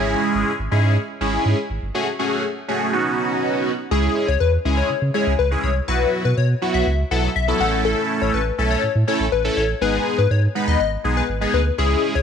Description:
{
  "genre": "dance-pop",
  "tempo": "122 BPM",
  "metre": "4/4",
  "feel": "straight",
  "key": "unclear",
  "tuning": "A4 = 439 Hz",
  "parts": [
    { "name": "big bright polysynth", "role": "accompaniment", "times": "0.0-12.1 s", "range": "F#3 to B4", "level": "-21 LUFS", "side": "right 1 dB", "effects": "phaser" },
    { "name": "warm sub bass", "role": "bass", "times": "0.0-12.2 s", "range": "G1 to C#3", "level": "-21 LUFS", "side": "right 1 dB", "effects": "none" },
    { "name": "plucky unison lead", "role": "melody", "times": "3.9-12.2 s", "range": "G#4 to F#5", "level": "-23 LUFS", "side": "left 11 dB", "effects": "phaser, slapback echo" }
  ],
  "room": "light reverb, digital ambience",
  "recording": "none",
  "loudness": "-18 LUFS",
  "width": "side -7 dB against mid",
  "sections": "0.0-3.9 A section; 3.9-12.2 B section",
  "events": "none",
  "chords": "0.0 C#m/G#; 1.9 F#madd9; 2.9 Badd9; 3.9 C#m; 5.9 Bsus4; 7.6 A; 9.8 G#m"
}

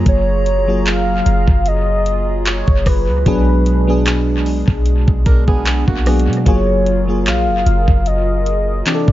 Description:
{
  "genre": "contemporary R&B",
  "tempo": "75 BPM",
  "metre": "4/4",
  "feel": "swing 54% on 16ths",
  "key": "F# major",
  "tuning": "A4 = 440 Hz",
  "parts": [
    { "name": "FM electric piano with soft pad layer", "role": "accompaniment", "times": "0.0-9.1 s", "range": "E3 to A4", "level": "-20 LUFS", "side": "left 1 dB", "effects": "chorus" },
    { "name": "hollow soft pad", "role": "sustained chords", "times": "0.0-9.1 s", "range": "B2 to A#5", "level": "-25 LUFS", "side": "right 1 dB", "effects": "chorus, sidechain pumping" },
    { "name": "clean 808-style bass", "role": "bass", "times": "0.0-9.1 s", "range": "F#1 to B2", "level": "-16 LUFS", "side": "equal", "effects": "none" },
    { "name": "warm velvety synth lead", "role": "melody", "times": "0.1-9.1 s", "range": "B4 to E#5", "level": "-20 LUFS", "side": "equal", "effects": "chorus, tape echo" },
    { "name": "trap drum kit", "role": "drums", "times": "0.1-9.1 s", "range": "handclaps, hi-hat, kick drum, rim click", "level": "-16 LUFS", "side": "equal", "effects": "tape echo" },
    { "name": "fingerpicked plugged-in swing-style acoustic guitar", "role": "arpeggios", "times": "5.3-6.4 s", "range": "A#3 to A#4", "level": "-24 LUFS", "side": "right 6 dB", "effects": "tape echo" }
  ],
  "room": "little or no reverb",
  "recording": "echo-heavy mix, nothing above 7.5 kHz",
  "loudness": "-12 LUFS",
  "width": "side -14 dB against mid",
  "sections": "0.0-9.1 A section",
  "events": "none",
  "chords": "0.0 F#maj9; 3.3 Bm6; 6.5 F#maj9"
}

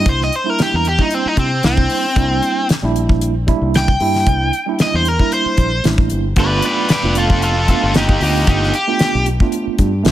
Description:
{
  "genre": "straight-eighth soul blues",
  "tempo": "114 BPM",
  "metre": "4/4",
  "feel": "swing 54% on 16ths",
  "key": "C mixolydian",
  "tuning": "A4 = 440 Hz",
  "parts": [
    { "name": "cranked stack guitar", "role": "melody", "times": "0.0-9.3 s", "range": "C4 to G5", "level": "-18 LUFS", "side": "equal", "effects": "overdrive" },
    { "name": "mellow tine electric piano", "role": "accompaniment", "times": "0.0-10.1 s", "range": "G3 to F4", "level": "-21 LUFS", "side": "right 6 dB", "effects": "overdrive, fast stereo tremolo" },
    { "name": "fingered electric bass", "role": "bass", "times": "0.0-10.1 s", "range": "F1 to C3", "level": "-18 LUFS", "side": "left 1 dB", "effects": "none" },
    { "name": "damped 70s drum kit", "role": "drums", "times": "0.1-10.1 s", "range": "hi-hat, kick drum, snare drum", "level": "-16 LUFS", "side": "left 1 dB", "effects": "none" }
  ],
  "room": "little or no reverb",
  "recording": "none",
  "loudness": "-13 LUFS",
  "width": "side -13 dB against mid",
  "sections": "0.0-10.1 A section",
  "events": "overdriven electric guitar solo 0.0-10.1",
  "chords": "0.0 C7; 6.4 G7"
}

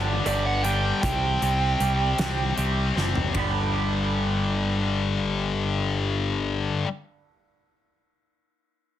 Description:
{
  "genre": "quiet-loud alternative rock",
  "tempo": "52 BPM (dotted quarters)",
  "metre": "6/8",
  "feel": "straight",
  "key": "G major",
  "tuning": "A4 = 440 Hz",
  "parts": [
    { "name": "twangy electric guitar", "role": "arpeggios", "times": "0.0-6.9 s", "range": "G2 to G4", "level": "-34 LUFS", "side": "right 11 dB", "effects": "phaser, analog delay" },
    { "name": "high-gain distorted guitar", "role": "riff", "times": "0.0-6.9 s", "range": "G2 to C4", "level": "-26 LUFS", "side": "left 5 dB", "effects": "distortion" },
    { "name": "growling picked electric bass", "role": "bass", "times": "0.0-6.7 s", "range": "F#1 to C2", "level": "-27 LUFS", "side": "equal", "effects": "overdrive" },
    { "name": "bluesy overdriven lead guitar", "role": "melody", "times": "0.3-2.5 s", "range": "D5 to G5", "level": "-27 LUFS", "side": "right 5 dB", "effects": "distortion, plate reverb" },
    { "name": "huge arena drum kit", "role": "drums", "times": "0.3-3.5 s", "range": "hi-hat, kick drum, ride cymbal, snare drum, toms", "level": "-31 LUFS", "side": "equal", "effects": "none" }
  ],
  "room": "moderate studio reverb, RT60 0.5 s",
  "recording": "heavily compressed radio sound, multiband compression",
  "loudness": "-22 LUFS",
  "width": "side -11 dB against mid",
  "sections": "0.0-3.4 A section; 3.4-5.7 B section",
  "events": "drum fill 3.0-3.4",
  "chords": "0.0 G; 1.0 Csus2; 3.4 G"
}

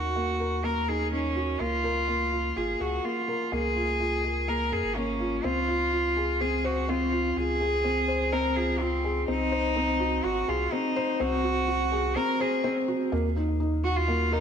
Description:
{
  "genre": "piano and strings electronica",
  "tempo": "125 BPM",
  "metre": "4/4",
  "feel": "straight",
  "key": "Db major",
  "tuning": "A4 = 440 Hz",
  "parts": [
    { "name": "rich cello", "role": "melody", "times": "0.0-14.4 s", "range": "C4 to Bb4", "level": "-28 LUFS", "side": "equal", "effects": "ping-pong delay" },
    { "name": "felt-muted upright piano", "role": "riff", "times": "0.0-14.4 s", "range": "Bb3 to C5", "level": "-29 LUFS", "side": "equal", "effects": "ping-pong delay" },
    { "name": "warm sub bass", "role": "bass", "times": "0.0-14.4 s", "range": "Ab1 to F2", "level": "-31 LUFS", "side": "equal", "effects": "none" }
  ],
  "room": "moderate lush hall reverb, RT60 2.0 s",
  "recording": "none",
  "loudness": "-24 LUFS",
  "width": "side -7 dB against mid",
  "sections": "0.0-13.1 A section; 13.1-14.4 B section",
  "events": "build-up 0.0-13.1; drop 13.1-14.4",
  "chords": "0.0 Ebm7; 1.6 Bbm7; 5.4 Dbmaj7; 9.3 Ab7; 13.1 Ebm"
}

